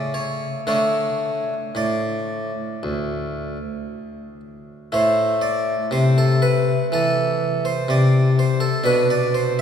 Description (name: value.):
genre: classical, baroque-style suite movement for harpsichord.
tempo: 55-63 BPM.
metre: 4/4.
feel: rubato.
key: A minor from 4.9 s.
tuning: A4 = 440 Hz.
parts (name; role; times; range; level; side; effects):
harpsichord; solo; 0.0-9.6 s; D2 to D5; -18 LUFS; left 1 dB; none.
room: wet cathedral reverb, RT60 4.6 s.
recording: recorded in a church or concert hall.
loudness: -18 LUFS.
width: side -8 dB against mid.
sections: 0.0-4.9 A section; 4.9-9.6 A section.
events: none.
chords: 0.0 A; 0.7 D5; 4.9 Am; 8.8 Bm.